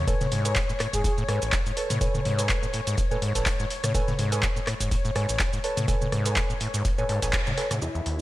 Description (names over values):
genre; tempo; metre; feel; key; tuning
acid house; 124 BPM; 4/4; swing 55% on 16ths; unclear; A4 = 440 Hz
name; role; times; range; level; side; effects
dark studio string section; sustained chords; 0.0-8.2 s; E4 to C#5; -34 LUFS; left 4 dB; sidechain pumping
overdriven acid bass; riff; 0.0-8.2 s; A1 to A2; -29 LUFS; equal; distortion, sidechain pumping
deep mellow chord stab; stabs; 0.1-8.0 s; E4 to A5; -32 LUFS; right 2 dB; chorus, tape echo
booming analog drum machine; drums; 0.1-8.2 s; handclaps, hi-hat, rim click, shaker, toms; -29 LUFS; equal; studio reverb
crunchy breakbeat drum kit; drums; 0.1-7.8 s; hi-hat, snare drum; -42 LUFS; equal; none
electronic kick drum; drums; 0.1-7.4 s; none; -28 LUFS; equal; overdrive, studio reverb
breathy flute-like synth lead; melody; 0.9-1.1 s; G#4; -34 LUFS; equal; chorus, cassette tape, digital delay
room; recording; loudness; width
light reverb, studio ambience; none; -23 LUFS; side -16 dB against mid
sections
0.0-7.8 A section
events
drop 0.0-7.8; band accent 7.3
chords
0.1 Amaj9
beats
| 0.08 0.56 1.04 1.53 | 2.01 2.50 2.98 3.46 | 3.95 4.43 4.91 5.40 | 5.88 6.37 6.85 7.33 | 7.82